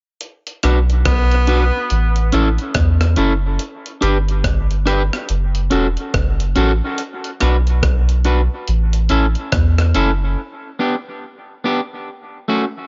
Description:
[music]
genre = dub reggae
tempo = 71 BPM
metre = 4/4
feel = swing 61% on 16ths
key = B minor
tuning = A4 = 440 Hz
[part]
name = breakbeat sampler-style drum kit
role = drums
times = 0.2-10.2 s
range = hi-hat, kick drum, rim click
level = -24 LUFS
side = equal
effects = dub echo
[part]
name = electric guitar at the edge of break-up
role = accompaniment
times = 0.6-12.6 s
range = A3 to B4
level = -23 LUFS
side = equal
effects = dub echo
[part]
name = soft dub sub bass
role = bass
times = 0.6-10.4 s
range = E1 to E2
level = -18 LUFS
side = equal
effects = none
[part]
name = breathy tenor saxophone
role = melody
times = 1.1-1.9 s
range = B3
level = -25 LUFS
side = equal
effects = dub echo
[sound]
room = digital ambience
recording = echo-heavy mix, nothing above 7.5 kHz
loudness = -17 LUFS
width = mono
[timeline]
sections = 0.2-12.9 A section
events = break 10.4-12.9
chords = 0.2 Bm; 1.9 A; 3.6 G; 5.3 F#m; 7.0 Bm; 8.7 A; 10.4 G; 12.1 F#m

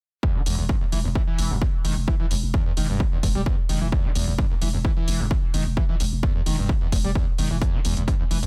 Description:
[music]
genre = driving peak-time techno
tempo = 130 BPM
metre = 4/4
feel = straight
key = E harmonic minor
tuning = A4 = 441 Hz
[part]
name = screaming distorted acid line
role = riff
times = 0.2-8.5 s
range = D#2 to G3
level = -31 LUFS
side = equal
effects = distortion, lush chorus, sidechain pumping, digital delay
[part]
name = electronic kick drum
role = drums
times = 0.2-8.2 s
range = none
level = -25 LUFS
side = equal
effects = overdrive, studio reverb
[part]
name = growling 808-style bass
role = bass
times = 0.5-8.5 s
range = E1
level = -28 LUFS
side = equal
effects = overdrive, sidechain pumping, low-pass filter
[part]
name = electronic hi-hat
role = drums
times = 0.5-8.5 s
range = none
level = -35 LUFS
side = equal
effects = overdrive, studio reverb
[sound]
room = little or no reverb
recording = none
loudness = -23 LUFS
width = mono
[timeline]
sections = 0.2-8.5 A section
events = none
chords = none

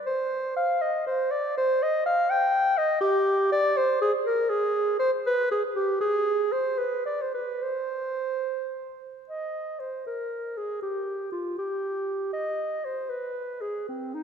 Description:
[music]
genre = classical, baroque-style fantasia for unaccompanied clarinet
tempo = 68-82 BPM (dotted quarters)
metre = 6/8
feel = rubato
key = C minor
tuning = A4 = 440 Hz
[part]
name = mellow clarinet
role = solo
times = 0.1-14.2 s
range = C4 to G5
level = -24 LUFS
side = equal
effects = none
[sound]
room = wet church reverb, RT60 2.8 s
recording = none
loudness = -24 LUFS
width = side -7 dB against mid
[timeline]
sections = 0.0-9.3 A section; 9.3-14.2 A section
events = none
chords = none

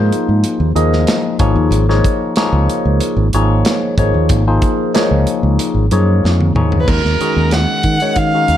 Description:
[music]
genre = electric jazz fusion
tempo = 93 BPM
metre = 4/4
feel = straight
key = unclear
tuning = A4 = 443 Hz
[part]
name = barky tine electric piano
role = accompaniment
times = 0.0-8.6 s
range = Eb3 to Eb5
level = -16 LUFS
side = left 2 dB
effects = phaser
[part]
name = fingered electric bass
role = bass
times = 0.0-8.6 s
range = Ab1 to Eb3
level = -14 LUFS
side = equal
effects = none
[part]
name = modern studio drum kit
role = drums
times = 0.1-8.6 s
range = crash cymbal, hi-hat, kick drum, snare drum, toms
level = -18 LUFS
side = equal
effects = none
[part]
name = dark violin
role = melody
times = 6.8-8.6 s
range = Bb4 to Gb5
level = -16 LUFS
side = equal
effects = none
[sound]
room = light reverb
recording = dark, warm production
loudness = -12 LUFS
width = side -11 dB against mid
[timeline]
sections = 0.0-6.9 A section; 6.9-8.6 B section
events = drum fill 6.2-6.9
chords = 0.0 Ebsus4; 1.4 Absus4; 6.9 Ebm9

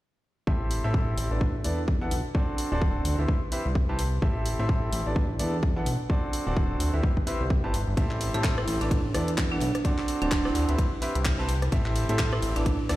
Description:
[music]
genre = piano house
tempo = 128 BPM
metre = 4/4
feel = swing 58% on 16ths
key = A dorian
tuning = A4 = 440 Hz
[part]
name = clear baby grand piano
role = riff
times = 0.5-13.0 s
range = B3 to A5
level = -31 LUFS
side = equal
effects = sidechain pumping, digital delay
[part]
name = fat analog bass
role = bass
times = 0.5-13.0 s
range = D1 to A2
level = -28 LUFS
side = equal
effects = sidechain pumping
[part]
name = electronic kick drum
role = drums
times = 0.5-12.8 s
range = none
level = -26 LUFS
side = equal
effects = overdrive
[part]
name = garage drum kit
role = drums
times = 0.7-13.0 s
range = handclaps, hi-hat, rim click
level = -35 LUFS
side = equal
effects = none
[part]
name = modern studio drum kit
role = drums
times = 8.0-13.0 s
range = hi-hat, ride cymbal, snare drum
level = -42 LUFS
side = left 1 dB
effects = sidechain pumping on cymbals, high-pass filter on cymbals, sidechain pumping on hats, high-pass filter on hats, high-pass filter on snare, high-pass filter on room
[part]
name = marimba with hard mallets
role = melody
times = 8.3-12.7 s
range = D4 to A4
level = -32 LUFS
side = right 2 dB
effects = digital delay
[sound]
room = light reverb, small room ambience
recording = played on a big sound system in a bare room, stone room reverb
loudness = -24 LUFS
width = side -16 dB against mid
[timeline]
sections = 0.5-13.0 A section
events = none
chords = 0.5 Am7; 1.4 E7sus4; 2.3 D7; 3.3 Cmaj7; 4.2 Am7; 5.2 E7sus4; 6.1 D7; 7.0 Cmaj7; 8.0 Am7; 8.9 E7sus4; 9.8 D7; 10.8 Cmaj7; 11.7 Am7

